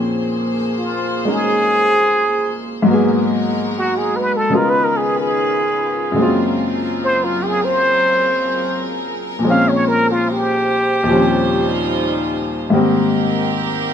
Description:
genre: jazz ballad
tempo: 73 BPM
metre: 4/4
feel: swing 67% on 8ths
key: unclear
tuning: A4 = 440 Hz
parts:
  - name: bright upright piano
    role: accompaniment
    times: 0.0-13.9 s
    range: Eb2 to Bb4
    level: -18 LUFS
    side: left 2 dB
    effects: none
  - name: rich studio string section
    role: sustained chords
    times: 0.0-13.9 s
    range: Eb3 to C5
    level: -23 LUFS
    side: right 1 dB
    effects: none
  - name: trumpet with plunger mute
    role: melody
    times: 0.8-11.9 s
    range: F4 to F5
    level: -16 LUFS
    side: right 1 dB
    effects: none
room: moderate echo chamber reverb, RT60 1.5 s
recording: faint mains hum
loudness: -14 LUFS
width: side -8 dB against mid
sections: 0.0-13.9 A section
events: muted trumpet solo 0.0-13.9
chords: 0.0 Bbm9; 2.9 Abm9; 4.5 Db9; 6.2 Gbmaj9#11; 9.4 Bbm9; 11.1 Eb13; 12.7 Abmaj9

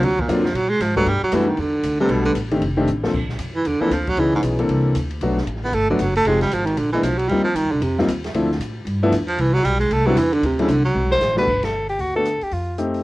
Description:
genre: jazz, small-group swing and bop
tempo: 231 BPM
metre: 4/4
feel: swing 61% on 8ths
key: unclear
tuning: A4 = 443 Hz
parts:
  - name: clear baritone saxophone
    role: second line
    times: 0.0-11.2 s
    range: G#2 to B3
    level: -20 LUFS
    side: right 2 dB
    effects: cassette tape, plate reverb
  - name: clear concert grand piano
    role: accompaniment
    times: 0.0-13.0 s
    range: Eb3 to A4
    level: -21 LUFS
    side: left 2 dB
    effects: cassette tape, plate reverb
  - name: upright bass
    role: bass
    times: 0.0-13.0 s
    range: F1 to A#2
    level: -24 LUFS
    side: equal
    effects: none
  - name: open jazz drum kit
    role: drums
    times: 0.0-13.0 s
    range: crash cymbal, hi-hat, kick drum, ride cymbal, rim click, snare drum, toms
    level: -32 LUFS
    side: equal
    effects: cassette tape
  - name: mellow soprano saxophone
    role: melody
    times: 11.1-12.8 s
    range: F4 to C5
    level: -20 LUFS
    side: equal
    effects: cassette tape, plate reverb
room: light reverb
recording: home recording on cassette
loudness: -17 LUFS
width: side -18 dB against mid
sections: 0.0-3.1 A section; 3.1-11.5 A section; 11.5-13.0 B section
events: baritone saxophone solo 0.0-11.5; drum fill 2.9, 10.9-11.5; band accent 11.6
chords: 0.0 D7alt; 1.1 Gmaj9; 2.6 F13; 3.1 Bb; 4.2 C#m7; 4.7 C9; 5.2 Bm7; 6.3 Fm7; 6.8 Bb7b9; 7.3 Eb69; 8.3 Dm9; 8.9 G13; 9.4 Cmaj7; 10.4 D7; 11.5 Gsus2; 12.5 F9

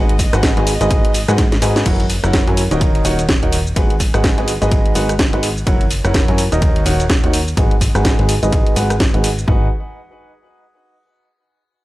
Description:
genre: piano house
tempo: 126 BPM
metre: 4/4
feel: swing 59% on 16ths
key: G# minor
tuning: A4 = 440 Hz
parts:
  - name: clear studio violin section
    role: sustained chords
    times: 0.0-1.9 s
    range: D#5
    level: -30 LUFS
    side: equal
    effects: sidechain pumping
  - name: clear grand piano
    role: riff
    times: 0.0-9.7 s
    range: D#3 to G#5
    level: -20 LUFS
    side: equal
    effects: vintage 12-bit sampler grit, sidechain pumping, low-pass filter, tape echo
  - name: plucky analog bass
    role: bass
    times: 0.0-9.7 s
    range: D#1 to G#2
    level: -19 LUFS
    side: equal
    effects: sidechain pumping
  - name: garage drum kit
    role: drums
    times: 0.1-9.5 s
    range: crash cymbal, hi-hat, rim click, shaker, snare drum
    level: -20 LUFS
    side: equal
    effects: studio reverb
  - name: breakbeat sampler-style drum kit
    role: drums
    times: 0.2-9.4 s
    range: ride cymbal, snare drum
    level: -34 LUFS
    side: right 1 dB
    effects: none
  - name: electronic kick drum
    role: drums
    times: 0.2-9.6 s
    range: none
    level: -16 LUFS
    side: equal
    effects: studio reverb
room: digital ambience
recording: dry, gritty hardware recording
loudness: -13 LUFS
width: side -17 dB against mid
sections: 0.0-1.9 A section; 1.9-9.5 B section; 9.5-11.4 C section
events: drop 0.0-1.9; drum fill 1.4-1.9; band accent 1.7; filter sweep on grand piano 1.9-9.5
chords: 0.0 G#m7; 1.9 F#7; 2.8 D#m7; 3.8 G#m7; 5.7 F#7; 6.6 D#m7; 7.6 G#m7; 9.5 G#7(no3)

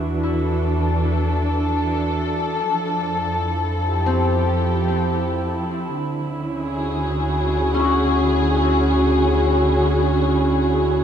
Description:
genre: ambient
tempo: 55 BPM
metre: 3/4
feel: straight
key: D lydian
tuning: A4 = 439 Hz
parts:
  - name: dark studio string section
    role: sustained chords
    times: 0.0-11.0 s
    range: D3 to A4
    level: -20 LUFS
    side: equal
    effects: none
  - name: concert harp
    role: arpeggios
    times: 0.0-10.6 s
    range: C4 to F#4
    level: -26 LUFS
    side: left 4 dB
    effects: tape echo
  - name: round analog bass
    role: bass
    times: 0.0-11.0 s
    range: D2 to F2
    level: -23 LUFS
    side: equal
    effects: none
room: wet concert hall reverb, RT60 2.1 s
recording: cassette tape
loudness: -18 LUFS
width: side -8 dB against mid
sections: 0.0-11.0 A section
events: none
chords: 0.0 E9sus4; 2.7 Fmaj9; 6.0 Dmaj9#11

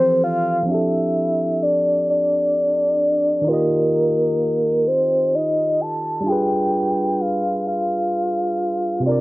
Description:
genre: R&B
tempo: 43 BPM (dotted quarters)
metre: 6/8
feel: straight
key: unclear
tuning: A4 = 440 Hz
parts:
  - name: soft octave-layered synth lead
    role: melody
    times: 0.0-9.2 s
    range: Bb4 to A5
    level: -18 LUFS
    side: equal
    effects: chorus, tremolo, cassette tape
  - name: barky tine electric piano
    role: accompaniment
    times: 0.0-9.2 s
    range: C3 to Eb5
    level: -23 LUFS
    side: right 1 dB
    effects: cassette tape
room: moderate booth ambience, RT60 0.2 s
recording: home recording on cassette, low-pass filter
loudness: -17 LUFS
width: side -19 dB against mid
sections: 0.7-9.2 A section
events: filter sweep 0.7-9.2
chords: 0.0 Fmaj9; 0.7 F6; 3.5 Eb; 6.3 G7b9

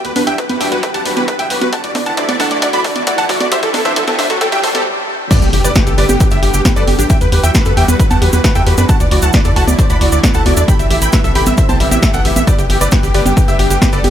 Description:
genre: uplifting trance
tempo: 134 BPM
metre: 4/4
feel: straight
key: G major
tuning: A4 = 440 Hz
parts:
  - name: dense compressed supersaw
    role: melody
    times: 0.0-14.1 s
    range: G4 to B5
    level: -18 LUFS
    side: right 1 dB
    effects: sidechain pumping, ping-pong delay
  - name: bright grand piano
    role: second line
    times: 0.0-14.1 s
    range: G4 to B5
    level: -23 LUFS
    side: right 1 dB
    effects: sidechain pumping, ping-pong delay
  - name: lush unison pad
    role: sustained chords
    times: 0.0-14.1 s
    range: C3 to G4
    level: -22 LUFS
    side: equal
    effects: chorus, sidechain pumping
  - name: analog pluck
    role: arpeggios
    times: 0.0-14.1 s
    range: F#3 to G5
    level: -22 LUFS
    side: left 2 dB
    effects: chorus, sidechain pumping, ping-pong delay
  - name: tight sequencer bass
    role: bass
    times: 0.0-14.1 s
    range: G1 to F#2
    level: -16 LUFS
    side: equal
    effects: sidechain pumping
  - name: punchy analog drum machine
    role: drums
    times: 0.0-14.1 s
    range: congas, crash cymbal, hi-hat, snare drum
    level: -19 LUFS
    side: right 2 dB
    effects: sidechain pumping on hats, sidechain pumping on perc, sidechain pumping on cymbals
  - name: riser and impact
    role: sound effects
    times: 0.9-7.1 s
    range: none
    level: -23 LUFS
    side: equal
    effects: none
  - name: electronic kick drum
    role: drums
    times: 0.4-13.9 s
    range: none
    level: -14 LUFS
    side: equal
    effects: high-pass filter on kick, high-pass filter on room
  - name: cabasa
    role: percussion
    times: 5.3-14.0 s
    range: none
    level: -24 LUFS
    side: right 2 dB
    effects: none
room: light reverb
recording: high-pass filter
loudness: -10 LUFS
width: side -10 dB against mid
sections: 0.0-5.3 A section; 5.3-14.1 B section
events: build-up 0.0-5.3; drum fill 0.0-4.9; filter sweep on synth pluck 0.0-5.3; riser 0.9-4.9; stop 4.9-5.3; drop 5.3-14.1; impact 5.3-7.1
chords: 0.0 Emadd9; 1.7 Dadd9; 3.5 Amadd9; 5.3 Gadd9; 7.1 Emadd9; 8.9 Dadd9; 10.7 Amadd9; 12.5 Gadd9

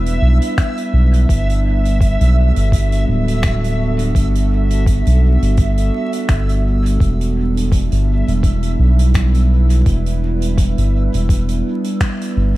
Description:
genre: ambient dub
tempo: 84 BPM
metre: 4/4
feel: swing 56% on 16ths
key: E minor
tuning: A4 = 441 Hz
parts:
  - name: warbly tape-like pad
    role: sustained chords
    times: 0.0-12.6 s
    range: G3 to B4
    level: -22 LUFS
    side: right 1 dB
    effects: chorus, built-in reverb
  - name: soft dub sub bass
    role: bass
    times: 0.0-12.5 s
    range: D1 to B1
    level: -14 LUFS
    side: equal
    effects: tube saturation
  - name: backwards swelling texture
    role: texture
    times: 0.0-12.6 s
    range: E5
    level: -28 LUFS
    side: right 1 dB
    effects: built-in reverb
  - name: soft-mallet drum kit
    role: drums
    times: 0.1-12.3 s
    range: finger snaps, hi-hat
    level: -29 LUFS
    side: right 1 dB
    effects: dub echo
  - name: electronic kick drum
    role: drums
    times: 0.6-12.2 s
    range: none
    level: -15 LUFS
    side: equal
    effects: overdrive
room: little or no reverb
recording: echo-heavy mix, vinyl crackle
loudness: -13 LUFS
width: side -17 dB against mid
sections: 0.0-12.6 A section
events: band accent 12.0-12.4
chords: 0.0 Em7; 1.3 Gmaj9; 7.0 Em7

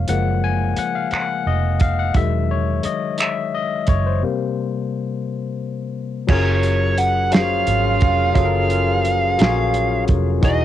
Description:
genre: slow six-eight R&B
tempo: 58 BPM (dotted quarters)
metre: 6/8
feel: straight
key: F# major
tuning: A4 = 438 Hz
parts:
  - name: barky tine electric piano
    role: accompaniment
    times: 0.0-10.6 s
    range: C3 to G#5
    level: -22 LUFS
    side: left 7 dB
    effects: overdrive, cassette tape
  - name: vintage muted fingered electric bass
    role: bass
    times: 0.0-10.6 s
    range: E1 to A#1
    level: -20 LUFS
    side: right 2 dB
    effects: none
  - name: warm soul drum kit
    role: drums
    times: 0.1-10.6 s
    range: crash cymbal, finger snaps, hi-hat, kick drum, snare drum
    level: -19 LUFS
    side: right 2 dB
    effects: cassette tape
  - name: bluesy overdriven lead guitar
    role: melody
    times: 6.3-10.6 s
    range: C#5 to F#5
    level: -20 LUFS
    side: right 2 dB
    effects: distortion, cassette tape
  - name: mellow horn section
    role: stabs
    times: 7.3-10.6 s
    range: C#3 to F#4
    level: -27 LUFS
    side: right 11 dB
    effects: cassette tape
room: light reverb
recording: home recording on cassette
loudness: -17 LUFS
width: side -12 dB against mid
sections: 0.0-6.3 A section; 6.3-10.6 B section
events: tine electric piano solo 0.0-6.3; break 4.2-6.3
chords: 0.0 F#maj9; 2.1 Emaj9; 4.2 Gmadd11/C; 6.3 F#maj9

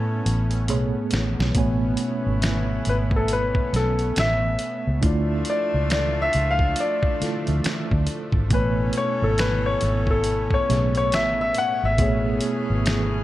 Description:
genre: R&B, neo-soul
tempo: 69 BPM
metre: 4/4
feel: swing 62% on 16ths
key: A major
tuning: A4 = 440 Hz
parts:
  - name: warm concert grand piano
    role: melody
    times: 0.0-13.1 s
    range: A4 to A5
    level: -24 LUFS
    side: left 2 dB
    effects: none
  - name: tine electric piano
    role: accompaniment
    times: 0.0-13.2 s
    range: A2 to G#5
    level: -28 LUFS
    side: right 2 dB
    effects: overdrive, fast stereo tremolo
  - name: lush unison pad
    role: sustained chords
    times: 0.0-13.2 s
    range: F3 to E5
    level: -34 LUFS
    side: right 1 dB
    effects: chorus
  - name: warm horn section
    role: stabs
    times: 0.0-13.2 s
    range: A3 to A4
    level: -34 LUFS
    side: equal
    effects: none
  - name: vintage muted fingered electric bass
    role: bass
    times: 0.0-13.2 s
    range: G#1 to A2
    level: -24 LUFS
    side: equal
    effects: none
  - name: dusty soul sampler-style drum kit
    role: drums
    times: 0.3-13.1 s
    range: finger snaps, hi-hat, kick drum, snare drum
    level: -26 LUFS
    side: equal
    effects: none
room: digital ambience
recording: none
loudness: -20 LUFS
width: side -15 dB against mid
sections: 0.0-1.6 A section; 1.6-13.2 B section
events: drum fill 0.0-1.6; grand piano solo 1.6-13.2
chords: 0.0 Amaj9; 5.0 Dmadd9; 8.5 Amaj9

